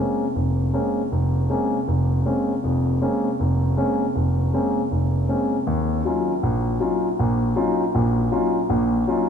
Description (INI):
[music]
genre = jazz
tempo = 158 BPM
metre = 4/4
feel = swing 66% on 8ths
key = Bb minor, Eb minor from 5.7 s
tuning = A4 = 441 Hz
[part]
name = dark concert grand piano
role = solo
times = 0.0-9.3 s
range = F1 to F4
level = -19 LUFS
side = equal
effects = none
[sound]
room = wet plate reverb, RT60 3.6 s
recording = dreamy mix soaked in reverb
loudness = -19 LUFS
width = side -7 dB against mid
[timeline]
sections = 0.0-5.7 A section; 5.7-9.3 B section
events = none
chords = 0.0 Bbm9; 5.7 Ebm9